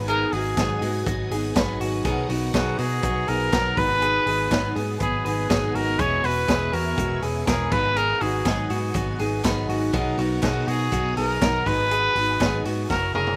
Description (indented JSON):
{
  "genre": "jangly indie pop",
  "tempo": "122 BPM",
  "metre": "4/4",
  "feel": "straight",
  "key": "unclear",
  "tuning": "A4 = 442 Hz",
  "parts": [
    { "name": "picked steel-string acoustic guitar", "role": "accompaniment", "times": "0.0-13.4 s", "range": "G#2 to B4", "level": "-32 LUFS", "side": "equal", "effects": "slapback echo" },
    { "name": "string machine, full ensemble", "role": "sustained chords", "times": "0.0-13.4 s", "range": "B3 to E6", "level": "-37 LUFS", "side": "equal", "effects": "phaser, ensemble chorus" },
    { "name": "electric guitar through a small old amp", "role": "arpeggios", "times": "0.0-13.4 s", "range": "F#4 to B4", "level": "-32 LUFS", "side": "equal", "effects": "slapback echo" },
    { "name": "picked electric bass", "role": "bass", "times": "0.0-13.3 s", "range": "E1 to B2", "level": "-31 LUFS", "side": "equal", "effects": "none" },
    { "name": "clear trumpet", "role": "melody", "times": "0.1-13.4 s", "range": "F#4 to C#5", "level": "-27 LUFS", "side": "equal", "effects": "none" },
    { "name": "raw garage drum kit", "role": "drums", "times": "0.1-13.4 s", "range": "crash cymbal, hi-hat, kick drum, ride cymbal, snare drum, toms", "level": "-30 LUFS", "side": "equal", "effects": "none" },
    { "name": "group handclap", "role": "percussion", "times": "0.6-13.0 s", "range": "none", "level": "-40 LUFS", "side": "equal", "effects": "none" }
  ],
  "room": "little or no reverb",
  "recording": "recorded outdoors, with no room sound",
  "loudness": "-23 LUFS",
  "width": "mono",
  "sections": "0.0-13.4 A section",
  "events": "drum fill 12.9-13.4",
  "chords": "0.0 G#m7; 2.0 Bmaj7; 3.8 G#m7; 6.0 E6; 7.7 G#m7; 9.9 Bmaj7; 11.7 G#m7"
}